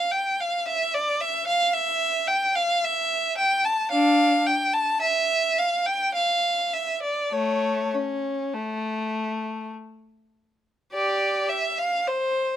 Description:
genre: classical, baroque-style suite movement for unaccompanied violin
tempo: 48-57 BPM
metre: 3/4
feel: rubato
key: unclear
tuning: A4 = 439 Hz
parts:
  - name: rich violin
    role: solo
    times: 0.0-12.6 s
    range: A3 to A5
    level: -22 LUFS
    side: equal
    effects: none
room: light reverb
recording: close, detailed microphones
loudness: -22 LUFS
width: side -11 dB against mid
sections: 0.0-10.9 A section; 10.9-12.6 B section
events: none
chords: none

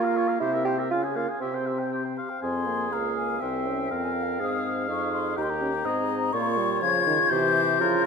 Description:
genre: quick classical-period movement for wind quintet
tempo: 122 BPM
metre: 2/4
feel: straight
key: F minor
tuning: A4 = 438 Hz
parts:
  - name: mellow hollow silver concert flute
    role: melody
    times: 0.0-8.0 s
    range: E5 to Ab6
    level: -28 LUFS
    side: left 9 dB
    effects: none
  - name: warm oboe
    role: second line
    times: 0.0-8.1 s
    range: Bb4 to Ab5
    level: -32 LUFS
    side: left 3 dB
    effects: none
  - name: bright clarinet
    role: accompaniment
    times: 0.0-8.1 s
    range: F4 to C5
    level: -31 LUFS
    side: right 7 dB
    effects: none
  - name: warm French horn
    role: accompaniment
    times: 0.0-8.0 s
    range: C3 to Eb4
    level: -31 LUFS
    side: left 1 dB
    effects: none
  - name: mellow bassoon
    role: bass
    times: 0.0-8.1 s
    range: C2 to G4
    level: -29 LUFS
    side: right 3 dB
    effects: none
room: moderate concert hall reverb, RT60 1.9 s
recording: none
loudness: -23 LUFS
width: side -5 dB against mid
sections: 0.0-2.4 A section; 2.4-8.1 B section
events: none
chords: 0.4 C7; 0.9 Db; 1.4 C; 2.4 Fm; 3.4 C; 3.9 F5; 4.4 Ab; 5.4 Eb7; 5.9 Ab; 6.3 Bbm; 7.3 C

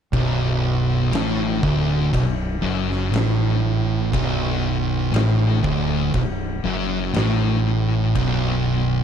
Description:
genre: stoner and doom metal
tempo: 60 BPM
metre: 4/4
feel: straight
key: B minor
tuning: A4 = 440 Hz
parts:
  - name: thick fuzz guitar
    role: riff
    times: 0.1-9.0 s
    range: B1 to A2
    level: -23 LUFS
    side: left 8 dB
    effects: distortion
  - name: thick fuzz guitar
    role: riff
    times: 0.1-9.0 s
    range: B1 to A2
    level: -22 LUFS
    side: right 6 dB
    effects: distortion
  - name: growling fingered electric bass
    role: bass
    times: 0.1-9.0 s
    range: B0 to A1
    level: -27 LUFS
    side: equal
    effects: overdrive
  - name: oversized low-tuned drum kit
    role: drums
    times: 0.1-8.4 s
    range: kick drum, ride cymbal, snare drum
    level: -28 LUFS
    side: left 1 dB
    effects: none
room: small room ambience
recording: dark, warm production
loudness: -18 LUFS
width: side -8 dB against mid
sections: 0.1-9.0 A section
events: none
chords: 0.1 Bm

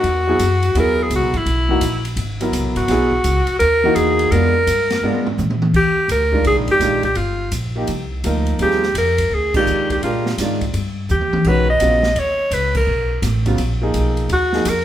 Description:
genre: modal jazz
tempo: 168 BPM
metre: 4/4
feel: swing 65% on 8ths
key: Eb major from 5.7 s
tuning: A4 = 439 Hz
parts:
  - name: bright alto saxophone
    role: melody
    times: 0.0-14.8 s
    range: E4 to D#5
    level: -17 LUFS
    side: equal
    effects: none
  - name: clear concert grand piano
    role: accompaniment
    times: 0.0-14.7 s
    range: C#3 to A#4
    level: -21 LUFS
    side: right 1 dB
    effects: none
  - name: upright bass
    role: bass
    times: 0.0-14.8 s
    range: G1 to A#2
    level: -20 LUFS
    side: equal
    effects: none
  - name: open jazz drum kit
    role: drums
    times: 0.0-14.8 s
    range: crash cymbal, hi-hat, kick drum, ride cymbal, snare drum, toms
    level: -25 LUFS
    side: equal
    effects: none
room: moderate large studio reverb, RT60 1.2 s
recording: band playing live in one room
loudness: -15 LUFS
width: side -11 dB against mid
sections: 0.0-5.7 A section; 5.7-14.8 B section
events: drum fill 5.0-5.7, 11.1-11.4; band accent 9.5, 12.7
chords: 0.0 Emaj9; 4.3 A#7b9; 5.7 Ebmaj9; 11.4 Bmaj9

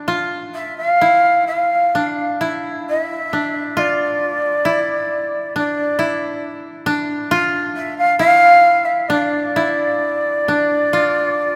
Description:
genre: japanese traditional, Japanese chamber music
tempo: 66 BPM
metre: 4/4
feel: uneven beats, rubato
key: D minor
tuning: A4 = 441 Hz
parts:
  - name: koto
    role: second line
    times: 0.0-11.6 s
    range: D4 to F4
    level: -23 LUFS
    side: equal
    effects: none
  - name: breathy shakuhachi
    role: melody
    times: 0.5-11.6 s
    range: D5 to F5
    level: -18 LUFS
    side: equal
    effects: none
room: moderate church reverb, RT60 4.0 s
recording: none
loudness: -17 LUFS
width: mono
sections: 0.1-11.6 A section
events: none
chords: none

